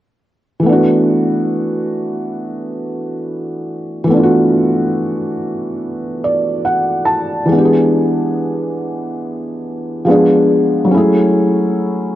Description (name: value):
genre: hip hop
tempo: 70 BPM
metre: 4/4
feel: swing 66% on 16ths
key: unclear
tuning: A4 = 440 Hz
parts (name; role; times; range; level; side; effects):
- felt-muted upright piano; accompaniment; 0.6-12.2 s; E3 to A5; -13 LUFS; equal; cassette tape, low-pass filter
room: moderate plate reverb, RT60 3.5 s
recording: cassette tape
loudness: -13 LUFS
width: side -13 dB against mid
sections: 0.6-12.2 A section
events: felt piano fill 5.8-7.5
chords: 0.6 D69; 7.5 E7; 10.1 Fdim7; 10.9 F#m9